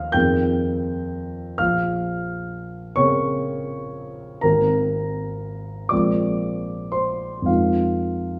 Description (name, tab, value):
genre	classical, impressionist solo piano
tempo	36-44 BPM (dotted quarters)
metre	6/8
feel	rubato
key	unclear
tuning	A4 = 440 Hz
part	warm concert grand piano	solo	0.0-8.4 s	Ab1 to G6	-23 LUFS	equal	none
room	wet recital hall reverb, RT60 1.7 s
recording	small room ambience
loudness	-22 LUFS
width	mono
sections	0.0-8.4 A section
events	none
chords	0.1 Fm11; 1.6 Bbm9; 4.4 Abmaj9; 5.9 Bb9; 7.5 Fm7